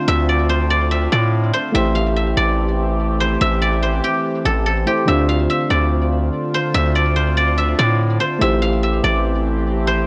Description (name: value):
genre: hip hop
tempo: 144 BPM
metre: 4/4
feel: half-time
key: D minor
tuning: A4 = 440 Hz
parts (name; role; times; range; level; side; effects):
- guzheng; melody; 0.0-10.1 s; G4 to F5; -23 LUFS; equal; low-pass filter, tape echo
- soft electric-piano-like synth keys; accompaniment; 0.0-10.1 s; D3 to C5; -25 LUFS; equal; chorus, low-pass filter
- sweeping resonant pad; sustained chords; 0.0-10.1 s; D3 to G4; -27 LUFS; equal; chorus, phaser
- distorted 808-style bass; bass; 0.1-10.0 s; A1 to A2; -21 LUFS; equal; distortion
room: digital ambience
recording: dry, gritty hardware recording, transformer saturation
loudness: -18 LUFS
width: mono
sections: 0.0-10.1 A section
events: none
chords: 0.0 Dm7; 1.7 Am7; 5.1 Dm7; 8.4 Am7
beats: | 0.08 0.50 0.91 1.33 | 1.75 2.16 2.58 3.00 | 3.41 3.83 4.25 4.66 | 5.08 5.50 5.91 6.33 | 6.75 7.16 7.58 8.00 | 8.41 8.83 9.25 9.66